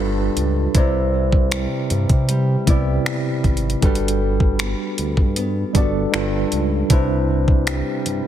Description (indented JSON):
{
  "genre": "contemporary R&B",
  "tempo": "78 BPM",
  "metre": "4/4",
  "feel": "straight",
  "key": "G major",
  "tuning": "A4 = 443 Hz",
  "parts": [
    { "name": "mellow tine electric piano", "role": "accompaniment", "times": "0.0-8.3 s", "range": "C3 to D5", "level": "-22 LUFS", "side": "right 1 dB", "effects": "medium stereo tremolo" },
    { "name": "nylon-string guitar", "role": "arpeggios", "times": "0.0-8.3 s", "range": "G2 to A4", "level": "-26 LUFS", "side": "equal", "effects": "digital delay" },
    { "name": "smooth gliding synth bass", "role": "bass", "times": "0.0-8.2 s", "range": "G1 to C3", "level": "-22 LUFS", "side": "equal", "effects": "none" },
    { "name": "smooth R&B drum kit", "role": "drums", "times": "0.4-8.2 s", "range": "finger snaps, hi-hat, kick drum", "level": "-19 LUFS", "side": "equal", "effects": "soft clipping on snare" }
  ],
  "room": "little or no reverb",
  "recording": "dense, heavily limited modern master",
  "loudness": "-16 LUFS",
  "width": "side -11 dB against mid",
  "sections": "0.0-8.3 A section",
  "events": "none",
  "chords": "0.0 G7; 0.7 Cmaj7; 3.8 Gmaj9; 6.1 G7; 6.9 Cmaj7"
}